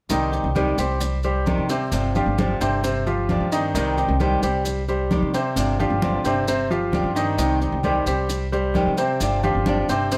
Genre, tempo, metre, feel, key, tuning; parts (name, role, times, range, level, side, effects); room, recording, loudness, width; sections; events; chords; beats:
latin, Cuban son and guajira; 132 BPM; 4/4; straight; C minor; A4 = 441 Hz
flamenco guitar; accompaniment; 0.1-10.2 s; C3 to G4; -26 LUFS; equal
bright baby grand piano; arpeggios; 0.1-10.2 s; C3 to Eb5; -27 LUFS; equal
upright bass; bass; 0.1-10.2 s; G1 to C3; -28 LUFS; equal
congas; percussion; 0.1-10.2 s; -30 LUFS; equal
maracas; percussion; 0.1-10.2 s; -37 LUFS; equal
light reverb; -22 LUFS; mono
0.1-10.2 A section
0.1 Cm; 1.9 G7sus4; 3.7 Cm; 5.6 G7sus4; 7.4 Cm; 9.2 G7sus4
| 0.10 0.56 1.01 1.47 | 1.93 2.38 2.84 3.29 | 3.75 4.20 4.66 5.11 | 5.57 6.02 6.48 6.93 | 7.39 7.84 8.30 8.75 | 9.21 9.66 10.12